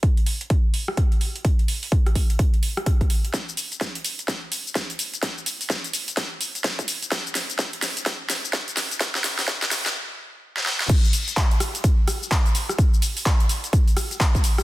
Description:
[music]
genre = house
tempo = 127 BPM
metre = 4/4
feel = swing 62% on 16ths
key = none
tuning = none
[part]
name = big-room dance drum kit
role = drums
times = 0.0-14.6 s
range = cabasa, crash cymbal, handclaps, hi-hat, ride cymbal, rim click, snare drum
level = -25 LUFS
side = equal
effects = high-pass filter on hats, high-pass filter on snare, high-pass filter on perc, high-pass filter on cymbals, high-pass filter on room
[part]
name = electronic kick drum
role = drums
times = 0.0-14.4 s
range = none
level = -20 LUFS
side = equal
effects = high-pass filter on kick, high-pass filter on room
[sound]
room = little or no reverb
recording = dense, heavily limited modern master, high-pass filter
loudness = -20 LUFS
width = side -17 dB against mid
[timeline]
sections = 0.0-3.3 A section; 3.3-10.9 B section; 10.9-14.6 C section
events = filter sweep on drum 0.0-3.3; build-up 3.3-10.9; drum fill 3.3-10.0, 10.5-10.9; stop 10.0-10.9; drop 10.9-14.6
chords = none

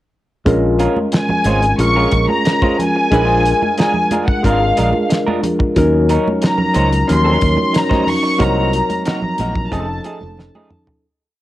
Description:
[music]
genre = lush 1970s-style soul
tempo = 91 BPM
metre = 4/4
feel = straight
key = Bb minor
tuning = A4 = 440 Hz
[part]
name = barky tine electric piano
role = accompaniment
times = 0.5-11.1 s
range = F3 to Bb4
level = -18 LUFS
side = left 1 dB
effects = phaser, cassette tape
[part]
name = modern bright fingered electric bass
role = bass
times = 0.5-10.5 s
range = F1 to Eb2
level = -17 LUFS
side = equal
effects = tube saturation
[part]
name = damped 70s drum kit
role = drums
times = 0.5-11.0 s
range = hi-hat, kick drum, snare drum, toms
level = -19 LUFS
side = equal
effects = cassette tape
[part]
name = congas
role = percussion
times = 0.5-10.9 s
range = none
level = -25 LUFS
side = right 2 dB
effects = none
[part]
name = electric guitar through a small old amp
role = riff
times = 0.8-10.9 s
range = F3 to C5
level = -23 LUFS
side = right 3 dB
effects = cassette tape
[part]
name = warm studio violin section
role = melody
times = 1.2-10.7 s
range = F5 to Db6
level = -18 LUFS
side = left 1 dB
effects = cassette tape
[sound]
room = light reverb, small room reverb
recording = home recording on cassette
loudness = -13 LUFS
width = side -15 dB against mid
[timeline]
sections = 0.5-11.0 verse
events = fade-out 8.4-11.0; drum fill 10.4-11.0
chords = 0.5 Bbm7; 3.1 Bb7; 5.8 Ebm7; 8.4 Cm7b5; 9.7 F7alt

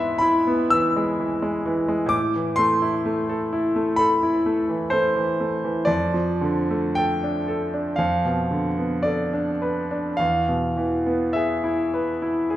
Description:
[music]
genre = classical, romantic nocturne for solo piano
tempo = 51-65 BPM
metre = 4/4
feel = rubato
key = A minor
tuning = A4 = 440 Hz
[part]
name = clear concert grand piano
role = solo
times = 0.0-12.6 s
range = E2 to E6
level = -20 LUFS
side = equal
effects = none
[sound]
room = wet recital hall reverb, RT60 1.4 s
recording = none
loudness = -20 LUFS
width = side -13 dB against mid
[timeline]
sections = 0.0-12.6 A section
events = none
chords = 0.0 E/G#; 2.1 Am; 5.9 Dm/F; 8.0 Bm7b5/F; 10.2 E

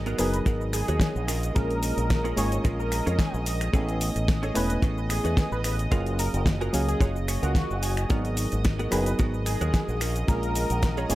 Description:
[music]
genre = nu-disco, nu disco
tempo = 110 BPM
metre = 4/4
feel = swing 54% on 16ths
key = G# dorian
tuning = A4 = 440 Hz
[part]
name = reed electric piano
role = accompaniment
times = 0.0-11.2 s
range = F#3 to G#5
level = -31 LUFS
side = equal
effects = dub echo
[part]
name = lush unison pad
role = sustained chords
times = 0.0-11.2 s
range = D#5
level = -37 LUFS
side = right 2 dB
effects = chorus, sidechain pumping
[part]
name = fingered electric bass with an envelope filter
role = bass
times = 0.0-11.2 s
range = E1 to E#2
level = -28 LUFS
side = equal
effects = sidechain pumping
[part]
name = direct-recorded clean electric guitar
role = riff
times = 0.1-11.2 s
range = B3 to G#5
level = -36 LUFS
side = right 2 dB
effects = ensemble chorus, dub echo
[part]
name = pop drum kit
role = drums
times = 0.1-11.2 s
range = cabasa, finger snaps, hi-hat, snare drum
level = -32 LUFS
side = left 1 dB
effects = dub echo
[part]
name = wide unison lead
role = melody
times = 0.2-11.2 s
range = F#4 to C#5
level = -33 LUFS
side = equal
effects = dub echo
[part]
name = kick drum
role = drums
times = 0.5-10.9 s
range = none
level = -23 LUFS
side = equal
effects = none
[sound]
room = light reverb, digital ambience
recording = echo-heavy mix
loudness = -23 LUFS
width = side -16 dB against mid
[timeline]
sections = 0.0-11.2 A section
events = clean electric guitar fill 2.9-3.7, 7.0-8.1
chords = 0.0 G#m9; 1.3 A#m7; 3.7 Amaj9; 5.9 F#maj9; 8.1 G#m9; 10.0 A#m7

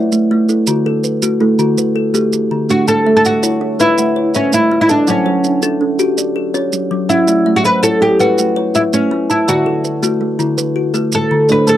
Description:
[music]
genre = southern african traditional, mbira-style interlocking cycle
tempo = 109 BPM (dotted quarters)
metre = 12/8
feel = straight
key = A mixolydian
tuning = A4 = 441 Hz
[part]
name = kalimba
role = arpeggios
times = 0.0-11.8 s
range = D3 to A5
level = -16 LUFS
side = left 3 dB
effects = none
[part]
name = kalimba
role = arpeggios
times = 0.0-11.8 s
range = D3 to F#5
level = -18 LUFS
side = right 4 dB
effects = none
[part]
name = maracas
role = percussion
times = 0.1-11.8 s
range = none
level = -22 LUFS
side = right 6 dB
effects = none
[part]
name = oud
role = melody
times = 2.7-11.8 s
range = C#4 to B4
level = -13 LUFS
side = equal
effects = none
[sound]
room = moderate booth ambience, RT60 0.2 s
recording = dry, close 1970s-style studio recording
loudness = -12 LUFS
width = side -12 dB against mid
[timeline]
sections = 0.0-2.9 A section; 2.9-11.8 B section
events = none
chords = 0.0 A5; 0.7 D; 2.9 A; 5.1 F#m; 7.3 A; 9.5 D

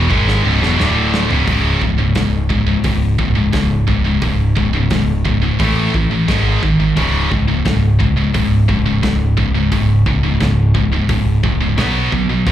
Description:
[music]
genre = heavy metal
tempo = 87 BPM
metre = 4/4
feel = straight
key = C# minor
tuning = A4 = 440 Hz
[part]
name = heavy high-gain guitar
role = riff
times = 0.0-12.5 s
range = C#2 to B3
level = -18 LUFS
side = left 6 dB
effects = distortion
[part]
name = scooped high-gain guitar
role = riff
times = 0.0-12.5 s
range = C#2 to B3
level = -18 LUFS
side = right 6 dB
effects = distortion
[part]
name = modern bright picked electric bass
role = bass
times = 0.0-12.5 s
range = C#1 to B1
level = -18 LUFS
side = equal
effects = none
[part]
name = modern studio drum kit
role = drums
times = 0.1-12.5 s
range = hi-hat, kick drum, snare drum, toms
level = -20 LUFS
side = equal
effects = none
[sound]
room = little or no reverb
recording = live gig heard through the venue's PA, club reverb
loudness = -13 LUFS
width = side -11 dB against mid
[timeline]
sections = 0.0-1.5 A section; 1.5-12.5 B section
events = drum fill 0.1-1.5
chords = 0.0 C#m; 1.5 C#5; 5.6 A5; 6.3 G#5; 7.0 C#5; 11.8 B5

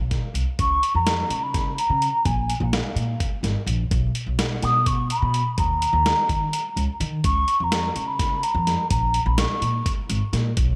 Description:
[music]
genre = progressive instrumental, band music in an uneven meter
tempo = 252 BPM (eighths)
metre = 7/8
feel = straight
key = unclear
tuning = A4 = 436 Hz
[part]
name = upright bass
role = bass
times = 0.0-10.8 s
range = G#1 to D#3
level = -27 LUFS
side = equal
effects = none
[part]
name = dusty soul sampler-style drum kit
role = drums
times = 0.1-10.7 s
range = hi-hat, kick drum, snare drum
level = -29 LUFS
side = equal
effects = none
[part]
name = mellow hollow wooden flute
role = melody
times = 0.6-9.9 s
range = E#5 to D#6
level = -25 LUFS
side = equal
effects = slapback echo
[sound]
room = moderate echo chamber reverb, RT60 2.4 s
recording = none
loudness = -23 LUFS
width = mono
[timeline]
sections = 0.6-10.8 A section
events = none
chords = 0.0 N.C.; 0.6 C#; 2.3 A#5; 3.9 N.C.; 5.6 D#5; 7.2 C#; 8.9 A#m

